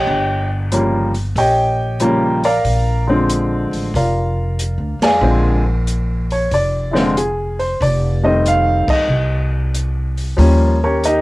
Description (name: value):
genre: jazz piano trio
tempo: 93 BPM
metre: 4/4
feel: swing 67% on 8ths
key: Bb mixolydian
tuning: A4 = 438 Hz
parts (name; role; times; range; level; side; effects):
- warm upright piano; melody; 0.0-11.2 s; Db3 to Bb5; -16 LUFS; equal; cassette tape
- upright bass; bass; 0.0-11.2 s; F1 to F2; -18 LUFS; equal; none
- open jazz drum kit; drums; 0.7-11.2 s; crash cymbal, hi-hat, kick drum, ride cymbal, snare drum; -25 LUFS; equal; none
room: light reverb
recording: home recording on cassette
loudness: -14 LUFS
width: side -19 dB against mid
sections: 0.0-11.2 A section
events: band accent 4.9-5.2, 8.8-9.1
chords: 0.0 Eb7; 2.7 Bb7; 7.8 F7; 10.4 Eb7